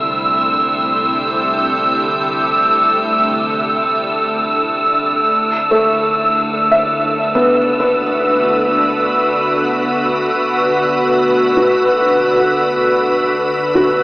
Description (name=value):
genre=ambient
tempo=free time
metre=none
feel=none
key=unclear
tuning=A4 = 440 Hz
part: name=soft additive organ-like pad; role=sustained chords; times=0.0-14.0 s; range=D3 to B4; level=-16 LUFS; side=equal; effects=ensemble chorus, built-in reverb
part: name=rich symphonic double bass section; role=bass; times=0.0-14.0 s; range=C2 to D2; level=-32 LUFS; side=equal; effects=none
part: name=wind-like tuned noise texture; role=texture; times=0.0-14.0 s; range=E6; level=-16 LUFS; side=right 1 dB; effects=built-in reverb
part: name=felt-muted upright piano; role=arpeggios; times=5.7-14.0 s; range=A3 to E5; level=-17 LUFS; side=equal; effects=tape echo
room=wet huge ambient reverb, RT60 7.7 s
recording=cassette tape, AM radio sound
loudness=-12 LUFS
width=side -20 dB against mid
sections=0.0-14.0 A section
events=fade-in on ambient pad 0.0-14.0; fade-out on double bass section 0.0-14.0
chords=0.0 C69; 5.3 Bm7/D